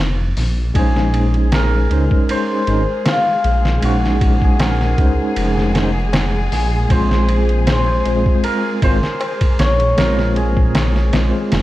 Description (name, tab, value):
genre	trip hop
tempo	78 BPM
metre	4/4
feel	swing 54% on 16ths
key	Bb minor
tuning	A4 = 440 Hz
part	dark detuned saw bass	bass	0.0-11.6 s	F1 to Db2	-17 LUFS	equal	tube saturation
part	trip hop sampler-style drum kit	drums	0.4-11.6 s	hi-hat, kick drum, ride cymbal, snare drum	-19 LUFS	equal	studio reverb
part	tine electric piano	accompaniment	0.7-11.6 s	Ab3 to C5	-22 LUFS	equal	medium stereo tremolo, tape echo
part	cimbalom	melody	0.8-11.6 s	F4 to Db5	-21 LUFS	left 1 dB	vintage 12-bit sampler grit, tape echo
part	dark studio string section	sustained chords	0.8-11.6 s	Ab3 to Ab4	-26 LUFS	equal	none
part	tabla	percussion	1.5-10.9 s	none	-30 LUFS	left 2 dB	none
part	swell	sound effects	11.5-11.6 s	none	barely audible	none	none
room	little or no reverb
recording	dark, warm production, vinyl crackle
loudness	-14 LUFS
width	side -16 dB against mid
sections	0.0-11.6 A section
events	none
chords	0.0 N.C.; 0.8 Bbm11; 6.9 Fm